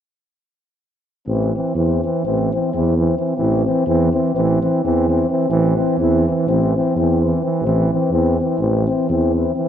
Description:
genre	balkan folk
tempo	255 BPM (eighths)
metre	9/8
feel	straight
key	A minor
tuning	A4 = 440 Hz
part	mellow euphonium	accompaniment	1.3-9.7 s	E3	-21 LUFS	right 4 dB	none
part	warm euphonium	accompaniment	1.3-9.7 s	C4	-20 LUFS	left 5 dB	none
part	mellow tuba	bass	1.3-9.5 s	A1 to E2	-19 LUFS	right 1 dB	none
room	moderate cathedral reverb, RT60 6.2 s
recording	in a vast, echoing space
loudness	-15 LUFS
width	side -9 dB against mid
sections	1.3-9.7 A section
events	none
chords	1.3 Am

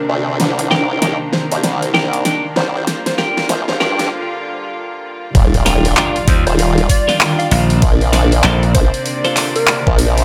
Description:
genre	glitch hop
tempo	97 BPM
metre	4/4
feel	swing 61% on 16ths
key	unclear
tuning	A4 = 440 Hz
part	plucky unison lead	melody	0.0-10.0 s	Bb4 to F5	-27 LUFS	equal	subtle chorus, dub echo
part	clear studio string section	sustained chords	0.0-10.2 s	C3 to D5	-25 LUFS	equal	sidechain pumping, low-pass filter
part	granular cloud pad	texture	0.0-10.2 s	Eb3 to C6	-29 LUFS	equal	none
part	formant-sweep wobble bass	bass	0.1-10.2 s	Eb1 to G2	-18 LUFS	equal	chorus, tube saturation, high-pass filter
part	dubstep drum kit	drums	0.4-10.2 s	handclaps, hi-hat, snare drum	-21 LUFS	equal	overdrive
part	twelve-string electric guitar	stabs	0.7-9.6 s	D4 to D5	-22 LUFS	equal	sidechain pumping, low-pass filter, dub echo
part	electronic kick drum	drums	5.3-10.0 s	none	-15 LUFS	equal	overdrive
part	impact	sound effects	5.4-7.8 s	none	-24 LUFS	equal	none
part	glassy slap bass	bass	6.3-8.7 s	Bb1 to Eb2	-16 LUFS	equal	none
room	little or no reverb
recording	high-pass filter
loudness	-15 LUFS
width	mono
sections	0.0-5.4 A section; 5.4-10.2 B section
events	build-up 0.0-5.4; drum fill 0.0-4.1; break 4.1-5.4; drop 5.4-10.2; impact 5.4-7.8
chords	0.4 Cm9; 2.9 Gm7; 5.4 Ebmaj9; 7.8 Bbmaj9

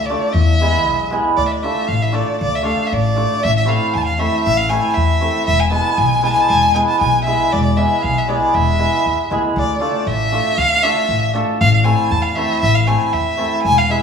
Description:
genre	balkan folk, Balkan wedding band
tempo	117 BPM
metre	2/4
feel	straight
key	unclear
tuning	A4 = 438 Hz
part	rich violin	melody	0.0-14.0 s	D5 to A5	-18 LUFS	left 1 dB	none
part	upright bass	bass	0.0-13.9 s	E1 to E2	-19 LUFS	left 2 dB	none
part	hammered dulcimer	accompaniment	0.1-14.0 s	G#3 to A4	-19 LUFS	right 2 dB	none
room	moderate recital hall reverb, RT60 1.4 s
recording	small room ambience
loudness	-14 LUFS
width	side -6 dB against mid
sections	0.0-1.4 A section; 1.4-9.6 B section; 9.6-14.0 B section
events	none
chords	0.3 E; 1.4 Dm; 3.4 Am; 5.5 E; 9.6 Dm; 11.6 Am

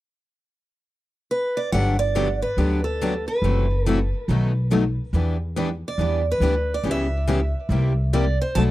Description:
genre	acoustic string swing (jazz manouche)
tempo	141 BPM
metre	4/4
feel	swing 63% on 8ths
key	G major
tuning	A4 = 440 Hz
part	picked steel-string acoustic guitar	melody	1.3-8.6 s	A4 to A5	-26 LUFS	right 2 dB	tape echo
part	picked steel-string acoustic guitar	accompaniment	1.7-8.7 s	B2 to G4	-25 LUFS	left 5 dB	none
part	picked steel-string acoustic guitar	accompaniment	1.7-8.7 s	B2 to B4	-28 LUFS	right 4 dB	none
part	upright bass	bass	1.7-8.7 s	F#1 to E2	-22 LUFS	equal	none
room	light reverb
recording	dry, close 1970s-style studio recording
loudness	-20 LUFS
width	side -16 dB against mid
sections	0.0-1.7 A section; 1.7-8.7 B section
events	none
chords	0.0 N.C.; 1.7 Gmaj9; 3.4 F#m7b5; 4.3 B7; 5.1 Em7; 6.8 C#m7b5; 7.7 C7

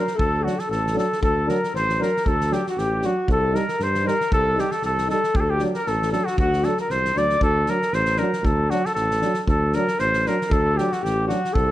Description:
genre	balkan folk, Balkan brass band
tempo	116 BPM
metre	2/4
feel	swing 55% on 16ths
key	unclear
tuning	A4 = 438 Hz
part	clear flugelhorn	melody	0.0-11.7 s	F#4 to D5	-23 LUFS	equal	none
part	mellow alto saxophone	second line	0.0-7.4, 10.5-11.7 s	F#4 to D5	-27 LUFS	left 3 dB	none
part	mellow euphonium	accompaniment	0.0-11.4 s	F#3 to G3	-30 LUFS	right 4 dB	none
part	warm French horn	accompaniment	0.0-11.4 s	D4 to Eb4	-32 LUFS	left 5 dB	none
part	loose indie drum kit	percussion	0.1-11.7 s	kick drum, snare drum	-28 LUFS	equal	none
part	mellow tuba	bass	0.2-11.7 s	A1 to G2	-26 LUFS	equal	none
room	light reverb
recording	none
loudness	-19 LUFS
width	side -14 dB against mid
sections	0.0-7.4 A section; 7.4-11.7 A section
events	none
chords	0.0 D; 3.3 Cm; 5.3 D

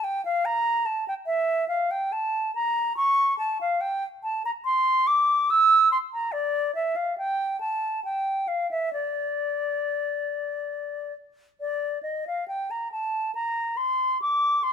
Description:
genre	classical, baroque-style fantasia for unaccompanied flute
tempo	67-73 BPM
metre	3/4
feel	rubato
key	D minor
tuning	A4 = 438 Hz
part	concert flute	solo	0.0-14.7 s	D5 to E6	-23 LUFS	equal	none
room	moderate stone room reverb, RT60 1.2 s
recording	minimal, uncompressed stereo recording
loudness	-23 LUFS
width	side -8 dB against mid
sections	0.0-11.6 A section; 11.6-14.7 A section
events	none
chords	none

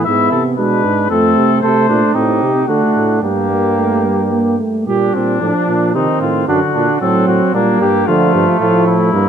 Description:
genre	classical, imitative canzona for brass ensemble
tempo	112 BPM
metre	3/4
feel	straight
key	G minor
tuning	A4 = 440 Hz
part	mellow trumpet	melody	0.0-9.3 s	D4 to E5	-18 LUFS	left 9 dB	none
part	warm flugelhorn	second line	0.0-9.3 s	A3 to A4	-18 LUFS	right 6 dB	none
part	dark euphonium	accompaniment	0.0-9.3 s	D3 to C4	-16 LUFS	right 2 dB	none
part	mellow bass trombone	bass	0.0-9.3 s	F2 to D3	-18 LUFS	right 2 dB	none
room	moderate concert hall reverb, RT60 2.4 s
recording	close, detailed microphones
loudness	-11 LUFS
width	side -8 dB against mid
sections	0.0-4.9 A section; 4.9-9.3 B section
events	none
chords	0.0 E/G#; 1.1 F; 1.6 Adim; 2.7 D; 3.2 Gm; 4.9 Gm/Bb; 5.9 Adim/C; 6.5 D/F#; 7.5 Gm/Bb; 8.1 Dm

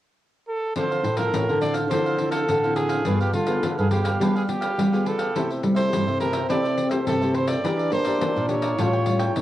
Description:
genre	samba and choro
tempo	105 BPM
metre	4/4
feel	straight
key	D minor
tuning	A4 = 443 Hz
part	clear trumpet	melody	0.5-9.4 s	F4 to D5	-26 LUFS	right 2 dB	none
part	cavaquinho	accompaniment	0.8-9.4 s	D4 to G5	-31 LUFS	right 4 dB	cassette tape
part	nylon-string guitar	accompaniment	0.8-9.4 s	G2 to Ab4	-30 LUFS	left 2 dB	cassette tape
part	nylon-string guitar	bass	0.8-9.4 s	G2 to C4	-24 LUFS	equal	none
part	pandeiro	percussion	0.8-9.4 s	none	-31 LUFS	left 5 dB	none
part	dark trombone	second line	5.4-9.4 s	C4 to E#4	-28 LUFS	left 2 dB	cassette tape
room	moderate booth ambience, RT60 0.2 s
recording	home recording on cassette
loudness	-20 LUFS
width	side -13 dB against mid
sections	0.8-9.4 A section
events	none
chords	0.0 N.C.; 0.8 Dm9; 3.1 G7b9; 5.4 C6; 7.6 Em7b5; 8.8 A7b13

